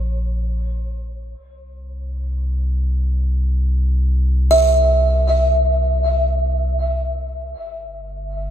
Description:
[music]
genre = ambient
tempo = free time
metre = none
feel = none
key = unclear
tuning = A4 = 435 Hz
[part]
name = warm sub bass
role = bass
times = 0.0-8.5 s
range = G1 to C2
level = -19 LUFS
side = equal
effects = none
[part]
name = buzzing kalimba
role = arpeggios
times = 4.5-7.4 s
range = E5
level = -18 LUFS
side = right 1 dB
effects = diffuse ambient delay
[sound]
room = light reverb, small room ambience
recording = none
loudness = -16 LUFS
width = side -10 dB against mid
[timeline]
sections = 0.0-8.5 A section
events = none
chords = 0.0 N.C.; 1.4 C; 7.6 G5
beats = free time

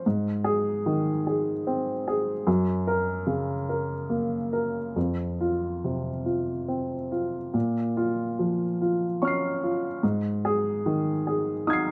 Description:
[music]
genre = neoclassical minimalist piano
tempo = 46-51 BPM (dotted quarters)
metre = 6/8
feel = rubato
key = unclear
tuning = A4 = 440 Hz
[part]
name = warm upright piano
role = solo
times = 0.0-11.9 s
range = F2 to C7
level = -27 LUFS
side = equal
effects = none
[sound]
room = light reverb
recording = none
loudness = -27 LUFS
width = mono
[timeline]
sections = 0.0-11.9 A section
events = none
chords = 0.0 Ab; 2.5 Gb; 5.0 F5; 7.5 Bbmadd9; 10.0 Ab5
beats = | 0.05 1.27 | 2.47 3.70 | 4.96 6.25 | 7.54 8.80 | 10.03 11.27

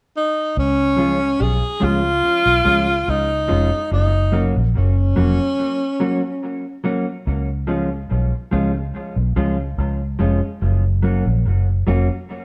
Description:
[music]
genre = roots reggae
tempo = 72 BPM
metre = 4/4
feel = straight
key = Db mixolydian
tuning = A4 = 436 Hz
[part]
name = breathy alto saxophone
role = melody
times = 0.2-6.8 s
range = Db4 to Ab4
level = -21 LUFS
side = equal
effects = none
[part]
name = vintage muted fingered electric bass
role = bass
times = 0.6-12.1 s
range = F1 to Db2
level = -21 LUFS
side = equal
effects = none
[part]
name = mellow electric guitar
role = accompaniment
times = 1.0-12.1 s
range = F3 to Gb4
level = -25 LUFS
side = equal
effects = dub echo
[sound]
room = wet stone room reverb, RT60 1.1 s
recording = band playing live in one room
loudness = -19 LUFS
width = mono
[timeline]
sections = 0.6-12.4 A section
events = none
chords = 0.0 N.C.; 0.6 Db; 3.9 Gb; 7.3 Db; 10.6 Gb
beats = | 0.56 1.39 2.23 3.07 | 3.91 4.74 5.58 6.42 | 7.26 8.09 8.93 9.77 | 10.61 11.44

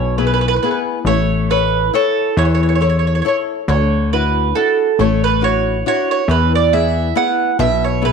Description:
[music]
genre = italian folk, Italian serenade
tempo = 138 BPM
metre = 3/4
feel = swing 53% on 8ths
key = A major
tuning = A4 = 439 Hz
[part]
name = mandolin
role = melody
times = 0.0-8.1 s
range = A4 to F#5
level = -17 LUFS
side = right 10 dB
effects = none
[part]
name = nylon-string guitar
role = accompaniment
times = 0.0-8.1 s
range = B2 to C#5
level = -20 LUFS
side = left 14 dB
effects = none
[part]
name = plucky analog bass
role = bass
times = 0.0-8.1 s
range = A1 to E2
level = -17 LUFS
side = left 1 dB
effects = none
[sound]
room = moderate echo chamber reverb, RT60 1.8 s, studio reverb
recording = 1960s-style stereo with parts hard left and right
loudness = -13 LUFS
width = side -6 dB against mid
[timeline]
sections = 0.0-8.1 A section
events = none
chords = 0.0 E; 1.1 A; 3.7 Dadd9; 6.3 E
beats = 0.19 0.62 | 1.06 1.50 1.93 | 2.37 2.81 3.25 | 3.69 4.13 4.56 | 5.00 5.43 5.86 | 6.29 6.73 7.16 | 7.60 8.03

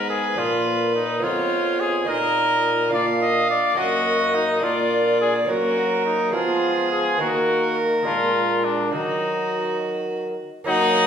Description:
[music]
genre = classical, renaissance-style consort dance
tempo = 70 BPM (dotted quarters)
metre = 6/8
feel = straight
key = Eb minor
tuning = A4 = 440 Hz
[part]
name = clear cornet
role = melody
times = 0.0-11.1 s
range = D4 to Eb5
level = -22 LUFS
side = left 3 dB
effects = none
[part]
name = rich violin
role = second line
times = 0.0-11.1 s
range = Gb4 to Gb5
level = -25 LUFS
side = right 3 dB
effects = none
[part]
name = lute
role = accompaniment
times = 0.0-11.1 s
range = F2 to Gb4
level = -30 LUFS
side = right 4 dB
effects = none
[part]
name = warm trombone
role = accompaniment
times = 0.0-11.1 s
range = Gb3 to Eb4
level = -27 LUFS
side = left 1 dB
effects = none
[part]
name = warm bassoon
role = bass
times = 0.0-11.1 s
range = F2 to Gb3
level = -26 LUFS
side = right 1 dB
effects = none
[sound]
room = wet recital hall reverb, RT60 1.3 s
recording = heard from further back in the room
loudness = -19 LUFS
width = side -8 dB against mid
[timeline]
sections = 0.0-10.7 A section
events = none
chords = 0.4 Bb; 1.2 Fdim; 2.1 Bbsus4; 2.9 Bb; 3.8 Gb; 4.6 Bb; 5.5 Gb; 6.3 Fdim; 7.2 Ebm; 8.1 Bb7; 8.9 Ebm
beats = | 0.37 1.23 | 2.08 2.93 | 3.78 4.63 | 5.49 6.34 | 7.20 8.06 | 8.93 9.80 | 10.67

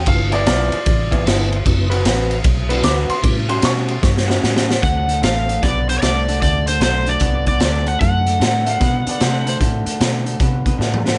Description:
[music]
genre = electric blues shuffle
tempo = 151 BPM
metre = 4/4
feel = swing 65% on 8ths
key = D mixolydian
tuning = A4 = 440 Hz
[part]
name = clear upright piano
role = second line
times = 0.0-3.9, 8.6-10.2 s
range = F4 to D6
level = -26 LUFS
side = equal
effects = digital delay
[part]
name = vintage muted fingered electric bass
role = bass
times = 0.0-11.2 s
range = F#1 to C3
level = -22 LUFS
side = equal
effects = none
[part]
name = tonewheel organ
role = accompaniment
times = 0.1-3.5 s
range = G3 to D5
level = -27 LUFS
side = equal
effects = chorus vibrato, slow rotary speaker
[part]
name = raw garage drum kit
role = drums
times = 0.1-11.2 s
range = hi-hat, kick drum, ride cymbal, snare drum, toms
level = -21 LUFS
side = equal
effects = none
[part]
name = electric guitar through a small old amp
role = riff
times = 0.3-11.2 s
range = G2 to B4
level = -26 LUFS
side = equal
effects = none
[part]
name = overdriven slide guitar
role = melody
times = 4.8-9.6 s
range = C5 to F#5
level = -23 LUFS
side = equal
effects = none
[sound]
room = light reverb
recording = nothing above 11.0 kHz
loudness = -17 LUFS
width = mono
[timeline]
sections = 0.0-4.8 A section; 4.8-11.2 B section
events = upright piano solo 0.0-4.8; drum fill 4.0-4.8, 10.8-11.2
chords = 0.1 G13; 1.7 D13; 3.2 A13; 4.8 D6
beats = | 0.08 0.47 0.87 1.26 | 1.66 2.06 2.45 2.85 | 3.24 3.64 4.04 4.43 | 4.83 5.23 5.62 6.02 | 6.42 6.82 7.22 7.62 | 8.02 8.41 8.81 9.21 | 9.61 10.01 10.40 10.80

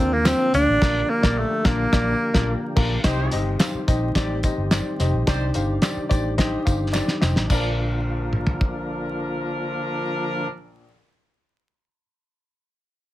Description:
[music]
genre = uptempo 1960s-style soul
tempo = 108 BPM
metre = 4/4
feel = straight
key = Bb major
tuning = A4 = 440 Hz
[part]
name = warm alto saxophone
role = melody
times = 0.0-2.8 s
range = A3 to D4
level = -21 LUFS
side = equal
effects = plate reverb
[part]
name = dark upright piano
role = accompaniment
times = 0.0-10.8 s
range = Bb1 to F5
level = -28 LUFS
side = left 3 dB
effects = none
[part]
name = tonewheel organ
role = sustained chords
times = 0.0-10.5 s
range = D3 to G4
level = -30 LUFS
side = equal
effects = chorus vibrato, stopped rotary speaker
[part]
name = vintage muted fingered electric bass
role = bass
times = 0.0-10.8 s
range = F1 to Eb2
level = -25 LUFS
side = equal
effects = none
[part]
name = cloth-damped thuddy drum kit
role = drums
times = 0.3-8.7 s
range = crash cymbal, hi-hat, kick drum, snare drum, toms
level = -22 LUFS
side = equal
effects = none
[part]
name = handclaps and tambourine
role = percussion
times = 0.3-7.8 s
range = none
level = -35 LUFS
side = right 1 dB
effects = none
[part]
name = warm horn section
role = second line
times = 3.0-10.5 s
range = F3 to C5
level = -29 LUFS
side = left 1 dB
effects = none
[sound]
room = light reverb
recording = heavily compressed radio sound, vinyl crackle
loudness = -20 LUFS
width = side -15 dB against mid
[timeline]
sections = 0.0-3.0 A section; 3.0-7.5 B section; 7.5-9.7 C section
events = band accent 0.8-3.0; drum fill 6.9-7.5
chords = 0.0 Bb; 3.0 Cm; 7.5 Bb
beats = 0.26 | 0.82 1.37 1.93 2.49 | 3.04 3.60 4.16 4.71 | 5.27 5.83 6.38 6.94 | 7.50 8.05 8.61 9.17

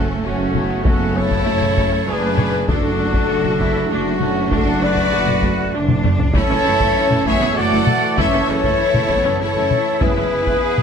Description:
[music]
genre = cinematic, epic orchestral film score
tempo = 98 BPM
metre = 3/4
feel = straight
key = unclear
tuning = A4 = 440 Hz
[part]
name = clear symphonic violin section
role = melody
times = 0.0-10.8 s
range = A3 to A4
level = -28 LUFS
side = left 3 dB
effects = none
[part]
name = mellow large flute ensemble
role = second line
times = 0.0-10.8 s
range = F#4 to F#5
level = -28 LUFS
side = right 1 dB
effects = none
[part]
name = rich symphonic violin section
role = second line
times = 0.0-10.8 s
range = F#4 to F#5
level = -29 LUFS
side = left 2 dB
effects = none
[part]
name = dark French horn section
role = sustained chords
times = 0.0-10.8 s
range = F#4 to E5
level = -22 LUFS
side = left 6 dB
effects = none
[part]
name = warm trombone section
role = sustained chords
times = 0.0-10.8 s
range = C#3 to B3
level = -27 LUFS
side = right 4 dB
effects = none
[part]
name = dark trumpet section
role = stabs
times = 0.0-10.8 s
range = C#4 to D5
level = -23 LUFS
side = right 2 dB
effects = none
[part]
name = rich symphonic cello section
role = bass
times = 0.0-10.8 s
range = A3 to G#4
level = -25 LUFS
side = right 1 dB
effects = none
[part]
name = rich symphonic double bass section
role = bass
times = 0.0-10.8 s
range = F#1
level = -23 LUFS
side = right 3 dB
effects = none
[part]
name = rich symphonic viola section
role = accompaniment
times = 0.2-10.8 s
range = C#3 to C#5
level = -28 LUFS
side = right 2 dB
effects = none
[part]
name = taiko ensemble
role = drums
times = 0.5-10.8 s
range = none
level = -21 LUFS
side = left 1 dB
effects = none
[sound]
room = moderate scoring stage reverb, RT60 1.7 s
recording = none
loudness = -15 LUFS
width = side -7 dB against mid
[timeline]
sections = 0.0-10.8 A section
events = drum fill 5.9-6.3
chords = 0.0 F#m; 2.7 D/F#; 10.0 E/F#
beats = 0.24 | 0.85 1.46 2.07 | 2.68 3.29 3.90 | 4.52 5.13 5.74 | 6.35 6.96 7.57 | 8.18 8.79 9.41 | 10.02 10.63

